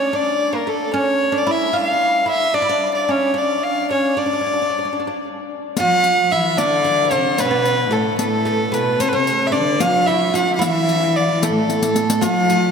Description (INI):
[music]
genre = Arabic maqam ensemble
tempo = 74 BPM (dotted quarters)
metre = 6/8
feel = straight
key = D maqam nahawand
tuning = A4 = 440 Hz
[part]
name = warm violin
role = melody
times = 0.0-12.7 s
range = A4 to F#5-44c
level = -18 LUFS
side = left 1 dB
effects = none
[part]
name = oud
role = second line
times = 0.0-12.7 s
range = A3 to F#4-50c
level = -22 LUFS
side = right 2 dB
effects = none
[part]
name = rich chamber cello section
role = second line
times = 5.8-12.7 s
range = A2 to F#3-50c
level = -21 LUFS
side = equal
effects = none
[part]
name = riq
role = percussion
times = 5.8-12.6 s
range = none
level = -27 LUFS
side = left 5 dB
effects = none
[sound]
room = wet cathedral reverb, RT60 5.3 s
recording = in a vast, echoing space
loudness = -16 LUFS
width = side -6 dB against mid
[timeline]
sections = 0.0-5.8 A section; 5.8-12.7 B section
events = drum fill 11.7-12.2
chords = none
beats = 0.13 | 0.94 1.75 | 2.55 3.36 | 4.16 4.97 | 5.78 6.58 | 7.39 8.19 | 9.00 9.80 | 10.61 11.41 | 12.22